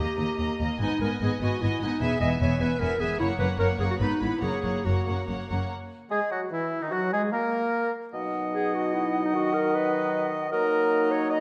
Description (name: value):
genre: quick classical-period movement for symphony orchestra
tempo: 149 BPM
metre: 3/4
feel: rubato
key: B major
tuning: A4 = 439 Hz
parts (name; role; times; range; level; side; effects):
- warm studio violin section; melody; 0.0-5.7 s; F#5 to B5; -40 LUFS; equal; none
- mellow clarinet; second line; 0.0-11.4 s; D#4 to Eb5; -31 LUFS; equal; none
- rich studio violin section; second line; 0.0-5.7 s; B4 to E5; -37 LUFS; equal; none
- warm studio viola section; accompaniment; 0.0-5.7 s; A#3 to B3; -34 LUFS; equal; none
- rich studio cello section; bass; 0.0-5.6 s; D#2 to G#2; -33 LUFS; equal; none
- rich studio double bass section; bass; 0.0-5.6 s; E1 to D#2; -34 LUFS; equal; none
- clear oboe; second line; 6.1-11.4 s; D#4 to D#5; -35 LUFS; equal; none
- silver concert flute; second line; 6.1-11.4 s; D#4 to Bb5; -36 LUFS; equal; none
- mellow bassoon; accompaniment; 6.1-11.4 s; B2 to A#3; -33 LUFS; equal; none
- warm French horn section; sustained chords; 6.1-11.4 s; D#3 to Eb4; -33 LUFS; equal; none
room: wet scoring stage reverb, RT60 1.7 s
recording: none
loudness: -26 LUFS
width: mono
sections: 0.0-5.7 A section; 5.7-11.4 B section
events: none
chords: 0.0 D#; 0.8 G#m; 2.0 E; 3.2 F#; 4.0 G#m; 4.4 F#; 5.7 N.C.; 8.1 B; 9.3 B/D#; 10.5 Ebm/Gb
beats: 0.38 | 0.80 1.21 1.61 | 2.01 2.40 2.80 | 3.19 3.59 3.99 | 4.42 4.85 5.28 | 5.71 6.11 6.52 | 6.92 7.33 7.73 | 8.13 8.53 8.94 | 9.34 9.73 10.13 | 10.52 10.91 11.31